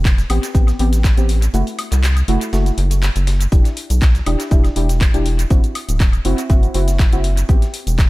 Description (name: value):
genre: deep house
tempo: 121 BPM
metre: 4/4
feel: swing 54% on 16ths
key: E minor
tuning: A4 = 442 Hz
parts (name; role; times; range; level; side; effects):
- rubbery square bass; bass; 0.0-8.1 s; D1 to C2; -16 LUFS; equal; sidechain pumping
- dusty soul sampler-style drum kit; drums; 0.1-8.1 s; hi-hat, snare drum; -36 LUFS; left 1 dB; none
- electronic kick drum; drums; 0.1-8.1 s; none; -13 LUFS; equal; none
- house drum kit; drums; 0.1-8.1 s; cabasa, handclaps, hi-hat, woodblock; -26 LUFS; equal; analog delay
- deep mellow chord stab; stabs; 0.3-7.6 s; A3 to G4; -23 LUFS; equal; chorus, sidechain pumping, analog delay
room: little or no reverb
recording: echo-heavy mix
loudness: -14 LUFS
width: side -19 dB against mid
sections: 0.0-8.1 A section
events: kick drops out 1.5-3.5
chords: 0.0 Am9; 1.5 F#m7b5; 3.5 Em7; 5.5 D9; 7.5 Am9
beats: 0.05 0.55 1.04 | 1.54 2.03 2.53 3.03 | 3.52 4.02 4.51 5.01 | 5.50 6.00 6.50 6.99 | 7.49 7.98